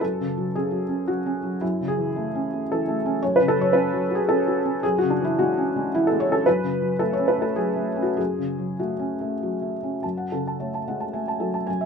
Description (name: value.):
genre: neoclassical minimalist piano.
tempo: 96-116 BPM.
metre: 3/4.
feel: rubato.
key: F# minor.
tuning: A4 = 438 Hz.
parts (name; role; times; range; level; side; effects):
felt-muted upright piano; solo; 0.0-11.9 s; F#2 to A5; -21 LUFS; equal; none.
room: light reverb.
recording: minimal, uncompressed stereo recording.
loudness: -21 LUFS.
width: side -6 dB against mid.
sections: 0.0-10.0 A section; 10.0-11.9 B section.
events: none.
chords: 0.0 F#m; 1.6 A/F#; 3.2 F#m; 4.8 C#m/F#; 6.5 F#m.